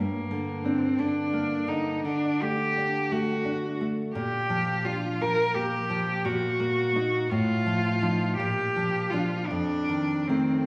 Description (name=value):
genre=romantic duo for cello and classical guitar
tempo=57 BPM (dotted quarters)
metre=6/8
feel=uneven beats, rubato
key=Bb major from 4.2 s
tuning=A4 = 441 Hz
part: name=clear cello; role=melody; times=0.0-10.7 s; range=Bb3 to Bb4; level=-30 LUFS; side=equal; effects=none
part: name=nylon-string guitar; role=accompaniment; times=0.0-10.7 s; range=F2 to Eb4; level=-31 LUFS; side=equal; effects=none
room=wet recital hall reverb, RT60 1.7 s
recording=recorded in a church or concert hall, small room ambience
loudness=-27 LUFS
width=mono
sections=0.0-10.7 A section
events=none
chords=0.0 Gm; 2.1 D; 4.2 Bb; 6.2 Ebm/Bb; 7.3 F7/A; 8.4 Bb; 9.5 F7